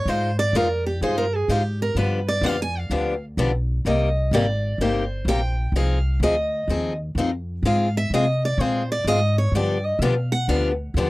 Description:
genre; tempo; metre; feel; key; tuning
acoustic string swing (jazz manouche); 127 BPM; 4/4; swing 65% on 8ths; unclear; A4 = 440 Hz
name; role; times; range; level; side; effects
picked steel-string acoustic guitar; melody; 0.0-10.7 s; G4 to Ab5; -25 LUFS; right 1 dB; none
upright bass; bass; 0.0-11.1 s; G1 to C3; -23 LUFS; equal; none
picked steel-string acoustic guitar; accompaniment; 0.1-11.1 s; C3 to C5; -22 LUFS; left 2 dB; none
room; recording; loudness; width
light reverb; dry, close 1970s-style studio recording; -20 LUFS; side -19 dB against mid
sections
0.0-11.1 A section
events
steel-string acoustic guitar solo 0.0-11.1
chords
0.1 Fm9; 2.0 G7; 3.9 Cm7; 5.7 Fm7; 7.6 Ab6; 9.5 G7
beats
| 0.07 0.54 1.01 1.49 | 1.96 2.43 2.91 3.38 | 3.85 4.33 4.80 5.27 | 5.75 6.22 6.69 7.17 | 7.64 8.12 8.59 9.06 | 9.54 10.01 10.48 10.96

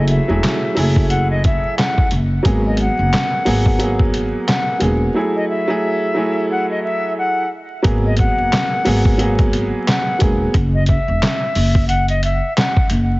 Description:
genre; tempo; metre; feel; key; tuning
hip hop, boom-bap hip-hop; 89 BPM; 4/4; swing 58% on 16ths; G# minor; A4 = 440 Hz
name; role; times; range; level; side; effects
silver concert flute; melody; 0.0-12.9 s; D#5 to F#5; -22 LUFS; left 1 dB; high-pass filter, low-pass filter, tape echo
warm upright piano; accompaniment; 0.0-10.5 s; F#3 to G#4; -20 LUFS; right 1 dB; cassette tape, high-pass filter, low-pass filter
upright bass; bass; 0.0-13.2 s; E1 to G#1; -18 LUFS; equal; none
trip hop sampler-style drum kit; drums; 0.1-13.1 s; handclaps, hi-hat, kick drum, snare drum; -18 LUFS; equal; none
room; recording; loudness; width
light reverb, studio ambience; heavily compressed radio sound, vinyl crackle, nothing above 7.8 kHz; -14 LUFS; side -21 dB against mid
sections
0.0-7.8 A section; 7.8-13.2 B section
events
break 5.2-7.8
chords
0.0 F#m9; 2.5 G#m9; 5.2 F#m9; 7.8 G#m9; 10.5 Esus2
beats
0.43 1.10 1.78 | 2.45 3.13 3.80 4.47 | 5.15 5.82 6.50 7.17 | 7.85 8.52 9.20 9.87 | 10.54 11.22 11.89 12.56

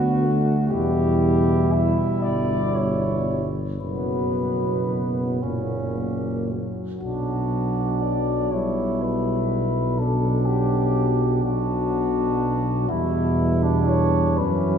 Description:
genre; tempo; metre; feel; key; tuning
classical, hymn-like piece for brass band; 37-42 BPM (dotted quarters); 6/8; rubato; B minor; A4 = 440 Hz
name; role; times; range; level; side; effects
dark cornet; melody; 0.0-14.8 s; E4 to E5; -27 LUFS; left 4 dB; none
mellow flugelhorn; second line; 0.0-14.8 s; B3 to F#4; -28 LUFS; right 5 dB; none
warm trombone; accompaniment; 0.0-14.8 s; A#2 to E3; -27 LUFS; right 1 dB; none
warm trombone section; accompaniment; 0.0-14.8 s; F#3 to B3; -28 LUFS; left 2 dB; none
mellow tuba; bass; 0.0-14.8 s; F#1 to F#2; -25 LUFS; equal; none
room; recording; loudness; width
wet church reverb, RT60 3.4 s; heard from further back in the room; -20 LUFS; side -7 dB against mid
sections
0.0-14.8 A section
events
none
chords
0.0 Bm; 0.7 Em; 3.8 F#sus4; 5.4 F#; 7.0 Bm; 8.5 Em/B; 10.0 Bm; 12.9 Em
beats
| 0.71 2.25 | 3.81 5.42 | 7.01 8.52 | 9.99 11.44 | 12.88 14.39

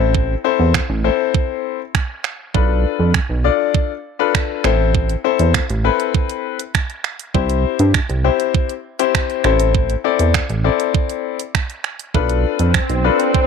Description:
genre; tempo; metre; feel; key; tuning
dance-pop; 100 BPM; 4/4; straight; A minor; A4 = 440 Hz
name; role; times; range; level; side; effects
clear concert grand piano; accompaniment; 0.0-13.5 s; C4 to D5; -18 LUFS; left 15 dB; sidechain pumping
chorused synth bass; bass; 0.0-13.1 s; A1 to G2; -16 LUFS; right 1 dB; sidechain pumping
pop drum kit; drums; 0.1-13.5 s; finger snaps, hi-hat, kick drum; -19 LUFS; right 5 dB; none
swell; sound effects; 12.6-13.5 s; none; -20 LUFS; right 1 dB; none
room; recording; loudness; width
light reverb; 1960s-style stereo; -15 LUFS; side -6 dB against mid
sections
0.0-13.5 A section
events
swell 12.6-13.5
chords
0.0 Am; 2.5 Bm7b5; 4.6 Am; 7.3 C; 9.4 Am; 12.1 Bm7b5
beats
| 0.14 0.74 1.34 1.95 | 2.54 3.15 3.75 4.34 | 4.95 5.54 6.14 6.75 | 7.34 7.95 8.54 9.14 | 9.74 10.35 10.95 11.54 | 12.14 12.74 13.35

